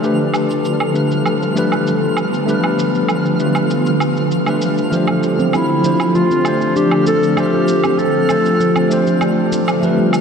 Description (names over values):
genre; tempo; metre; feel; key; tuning
organic downtempo; 98 BPM; 4/4; straight; unclear; A4 = 442 Hz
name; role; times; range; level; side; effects
tine electric piano; accompaniment; 0.0-10.2 s; A3 to C5; -19 LUFS; left 2 dB; medium tremolo, vintage 12-bit sampler grit, low-pass filter, slapback echo, ping-pong delay
granular cloud pad; sustained chords; 0.0-10.2 s; D3 to A4; -20 LUFS; equal; built-in reverb
shaker and woodblock; drums; 0.0-10.2 s; none; -25 LUFS; right 3 dB; low-pass filter on perc, slapback echo
twinkling granular texture; texture; 0.0-10.2 s; F3 to F6; -25 LUFS; equal; built-in reverb
handpan; arpeggios; 4.9-10.2 s; F3 to D4; -17 LUFS; equal; vintage 12-bit sampler grit, slapback echo, ping-pong delay
warm clarinet; melody; 5.5-9.2 s; E4 to A4; -19 LUFS; equal; slapback echo, ping-pong delay
room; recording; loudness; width
wet lush hall reverb, RT60 2.7 s; big arena sound; -13 LUFS; side -6 dB against mid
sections
0.0-10.2 A section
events
filter sweep on tine electric piano 0.0-10.2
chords
0.0 G7; 4.9 Dm7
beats
| 0.03 0.64 1.25 1.87 | 2.48 3.09 3.70 4.32 | 4.93 5.54 6.15 6.76 | 7.38 7.99 8.60 9.21 | 9.83